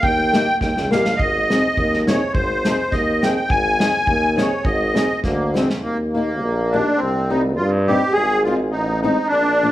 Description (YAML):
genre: alpine folk, alpine dance band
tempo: 104 BPM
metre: 2/4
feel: swing 53% on 8ths, rubato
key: Ab major, Eb major from 5.8 s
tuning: A4 = 440 Hz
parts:
  - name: musette accordion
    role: melody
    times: 0.0-9.7 s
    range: Bb3 to Ab5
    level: -19 LUFS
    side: equal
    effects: none
  - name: clear tuba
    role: bass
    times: 0.0-9.7 s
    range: Ab1 to G2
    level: -22 LUFS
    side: equal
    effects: none
  - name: loose indie drum kit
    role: drums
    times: 0.0-5.8 s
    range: hi-hat, kick drum, snare drum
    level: -23 LUFS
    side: equal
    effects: none
  - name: fingerpicked old ladder-braced acoustic guitar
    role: accompaniment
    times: 0.3-9.7 s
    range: F3 to Ab4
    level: -23 LUFS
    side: left 1 dB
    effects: none
room: wet large studio reverb, RT60 1.3 s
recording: band playing live in one room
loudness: -16 LUFS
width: side -14 dB against mid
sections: 0.0-5.8 A section; 5.8-9.7 B section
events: drum fill 0.6-1.2, 5.2-5.8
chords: 0.0 Eb; 1.2 Ab; 5.8 Eb; 7.0 Cm; 8.2 Ab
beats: | 0.03 0.61 | 1.19 1.77 | 2.35 2.92 | 3.50 4.07 | 4.65 5.24 | 5.83 6.43 | 7.01 7.58 | 8.16 8.73 | 9.31